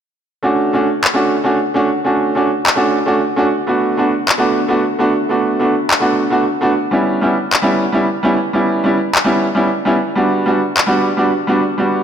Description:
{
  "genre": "future bass",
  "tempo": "148 BPM",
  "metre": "4/4",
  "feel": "half-time",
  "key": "unclear",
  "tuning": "A4 = 440 Hz",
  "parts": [
    { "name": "clear grand piano", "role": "accompaniment", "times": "0.4-12.0 s", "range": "G3 to F#4", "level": "-13 LUFS", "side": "right 1 dB", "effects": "digital delay" },
    { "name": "electronic handclaps", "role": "drums", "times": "1.0-10.9 s", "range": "none", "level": "-17 LUFS", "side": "left 1 dB", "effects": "none" }
  ],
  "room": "moderate lush hall reverb, RT60 2.2 s",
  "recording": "none",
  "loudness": "-13 LUFS",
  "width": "side -8 dB against mid",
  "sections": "0.2-12.0 A section",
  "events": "none",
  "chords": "0.2 Dmaj7/A; 3.5 Bm7/A; 6.7 Em6/G; 10.0 Gmaj7"
}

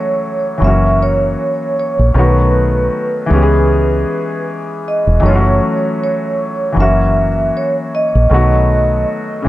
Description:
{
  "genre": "lo-fi hip hop",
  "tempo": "78 BPM",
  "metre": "4/4",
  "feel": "swing 58% on 16ths",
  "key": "F# dorian",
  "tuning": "A4 = 440 Hz",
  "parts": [
    { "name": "vibraphone with soft mallets", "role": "melody", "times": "0.0-9.1 s", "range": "B4 to E5", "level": "-17 LUFS", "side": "right 1 dB", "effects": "low-pass filter, tape echo" },
    { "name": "felt-muted upright piano", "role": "accompaniment", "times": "0.0-9.5 s", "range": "C#3 to G#4", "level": "-17 LUFS", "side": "left 1 dB", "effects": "cassette tape, low-pass filter" },
    { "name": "deep dub fingered electric bass", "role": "bass", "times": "0.6-9.5 s", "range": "E1 to C#2", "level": "-13 LUFS", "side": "equal", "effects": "none" }
  ],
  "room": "light reverb, small room ambience",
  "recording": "none",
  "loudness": "-12 LUFS",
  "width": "side -16 dB against mid",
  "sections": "0.0-9.5 A section",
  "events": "none",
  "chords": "0.0 F#m7; 0.6 F#7; 2.2 B7; 3.3 C#m7; 5.2 F#m7; 6.8 F#7; 8.3 B7"
}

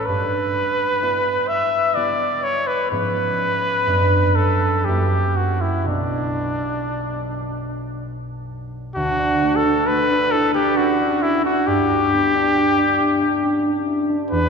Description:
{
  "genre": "classical, romantic duo for trumpet and harp",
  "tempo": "58-70 BPM",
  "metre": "3/4",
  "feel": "rubato",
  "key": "unclear",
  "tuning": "A4 = 443 Hz",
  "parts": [
    { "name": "warm trumpet", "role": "melody", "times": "0.0-14.5 s", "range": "D4 to E5", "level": "-20 LUFS", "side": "left 1 dB", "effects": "none" },
    { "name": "concert harp", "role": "accompaniment", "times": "0.0-14.5 s", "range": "A1 to F#4", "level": "-21 LUFS", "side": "right 1 dB", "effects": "none" }
  ],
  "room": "wet church reverb, RT60 3.9 s",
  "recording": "none",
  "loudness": "-17 LUFS",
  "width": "side -5 dB against mid",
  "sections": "0.0-9.0 A section; 9.0-14.5 B section",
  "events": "none",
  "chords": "0.1 Em/G; 2.9 C#7/G#; 3.9 Bm/F#; 4.9 F#7; 5.9 Bm; 9.0 D; 11.7 Gmaj7"
}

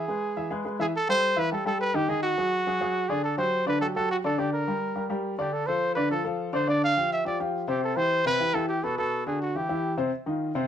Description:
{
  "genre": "jazz",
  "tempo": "209 BPM",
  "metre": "4/4",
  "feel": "straight",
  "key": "unclear",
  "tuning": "A4 = 439 Hz",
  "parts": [
    { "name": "warm trumpet", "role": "melody", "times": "0.0-10.0 s", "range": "F#4 to F5", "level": "-26 LUFS", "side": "right 1 dB", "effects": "none" },
    { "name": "clear upright piano", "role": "accompaniment", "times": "0.0-10.7 s", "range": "B2 to E5", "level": "-28 LUFS", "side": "left 1 dB", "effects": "none" }
  ],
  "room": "moderate studio reverb, RT60 0.6 s",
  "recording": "dark, warm production",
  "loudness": "-24 LUFS",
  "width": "side -9 dB against mid",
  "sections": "0.9-10.1 A section",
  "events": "none",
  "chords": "0.0 E; 0.9 Am7; 2.1 G#5; 3.2 G5; 4.4 Gm/D; 5.5 Dm7; 6.7 G5; 7.8 Cmaj7; 9.0 Bm7; 9.5 C; 10.1 F5"
}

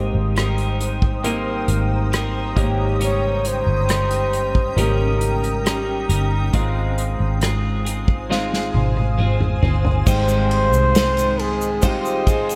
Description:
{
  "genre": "pop ballad",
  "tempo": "68 BPM",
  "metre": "4/4",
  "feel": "straight",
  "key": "unclear",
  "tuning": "A4 = 440 Hz",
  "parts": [
    { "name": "clear concert grand piano", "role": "accompaniment", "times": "0.0-12.6 s", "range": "Ab2 to G5", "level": "-29 LUFS", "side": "equal", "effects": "lush chorus" },
    { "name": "granular cloud pad", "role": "sustained chords", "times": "0.0-12.6 s", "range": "Db4 to Eb6", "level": "-32 LUFS", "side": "equal", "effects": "built-in reverb, analog chorus" },
    { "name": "twelve-string electric guitar", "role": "arpeggios", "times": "0.0-12.6 s", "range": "Ab2 to C5", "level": "-31 LUFS", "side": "equal", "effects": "none" },
    { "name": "vintage muted fingered electric bass", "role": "bass", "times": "0.0-12.6 s", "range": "G1 to C2", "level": "-24 LUFS", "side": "equal", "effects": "none" },
    { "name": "unplugged drum kit", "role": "drums", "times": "0.4-12.6 s", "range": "crash cymbal, hi-hat, kick drum, ride cymbal, rim click, snare drum, toms", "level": "-24 LUFS", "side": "equal", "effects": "none" },
    { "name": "breathy flugelhorn", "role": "melody", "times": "3.0-12.6 s", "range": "G4 to Db5", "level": "-24 LUFS", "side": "equal", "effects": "delay" },
    { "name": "egg shaker", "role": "percussion", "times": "10.1-12.6 s", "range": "none", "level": "-35 LUFS", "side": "equal", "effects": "none" }
  ],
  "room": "moderate plate reverb, RT60 3.1 s",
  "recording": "dreamy mix soaked in reverb",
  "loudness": "-20 LUFS",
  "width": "mono",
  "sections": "0.0-10.1 A section; 10.1-12.6 B section",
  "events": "drum fill 8.3-10.1",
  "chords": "0.0 Cm7/Ab; 2.6 Eb7; 6.5 Fm7/Ab"
}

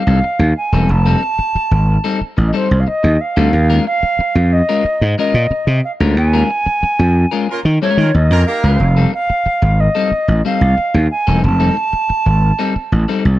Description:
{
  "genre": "funk",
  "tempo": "91 BPM",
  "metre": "4/4",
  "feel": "straight",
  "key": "F mixolydian",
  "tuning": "A4 = 440 Hz",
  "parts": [
    { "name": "silver concert flute", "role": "melody", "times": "0.0-13.1 s", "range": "C5 to A5", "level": "-18 LUFS", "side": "right 1 dB", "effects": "none" },
    { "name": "electric guitar at the edge of break-up", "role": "accompaniment", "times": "0.0-13.3 s", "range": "G3 to Bb4", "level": "-21 LUFS", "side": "left 6 dB", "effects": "wide subtle chorus" },
    { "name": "gritty slap bass", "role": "bass", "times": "0.1-13.4 s", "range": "E1 to Eb3", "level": "-12 LUFS", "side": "equal", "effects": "overdrive" },
    { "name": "warm horn section", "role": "second line", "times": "7.5-8.9 s", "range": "Bb3 to Bb4", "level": "-22 LUFS", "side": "right 2 dB", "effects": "none" }
  ],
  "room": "small room ambience",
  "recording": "dark, warm production",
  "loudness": "-12 LUFS",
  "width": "side -15 dB against mid",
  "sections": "0.0-13.4 A section",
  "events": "band accent 6.2-8.8",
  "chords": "0.0 F9; 3.5 Eb9sus4; 8.8 F9"
}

